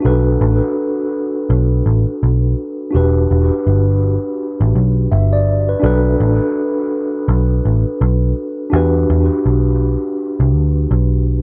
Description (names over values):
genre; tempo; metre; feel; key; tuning
lovers rock reggae; 83 BPM; 4/4; swing 60% on 16ths; E minor; A4 = 439 Hz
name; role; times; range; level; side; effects
mellow tine electric piano; accompaniment; 0.0-11.4 s; D4 to E5; -20 LUFS; equal; dub echo
vintage muted picked electric bass; bass; 0.1-11.4 s; E1 to E2; -16 LUFS; equal; none
room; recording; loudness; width
light reverb; none; -16 LUFS; mono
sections
0.0-11.4 A section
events
none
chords
0.0 Bm7; 2.9 Em7; 5.8 Bm7; 8.7 Em7